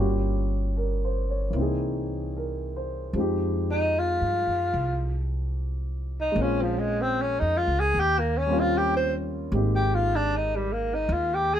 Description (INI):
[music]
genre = jazz ballad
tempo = 75 BPM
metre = 4/4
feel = swing 67% on 8ths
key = Ab major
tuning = A4 = 440 Hz
[part]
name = dark upright piano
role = accompaniment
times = 0.0-11.6 s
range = E3 to Db5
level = -30 LUFS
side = equal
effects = none
[part]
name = upright bass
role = bass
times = 0.0-11.6 s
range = G1 to G2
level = -28 LUFS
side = equal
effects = none
[part]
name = breathy tenor saxophone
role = melody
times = 3.7-11.6 s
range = F3 to C5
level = -24 LUFS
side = equal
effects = none
[sound]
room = little or no reverb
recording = none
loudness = -23 LUFS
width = side -10 dB against mid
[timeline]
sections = 0.0-11.6 A section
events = tenor saxophone solo 0.0-11.6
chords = 0.0 Gm7b5; 1.5 C7alt; 3.1 Fm9; 6.4 Bbm7; 7.9 Eb13; 9.5 Abmaj9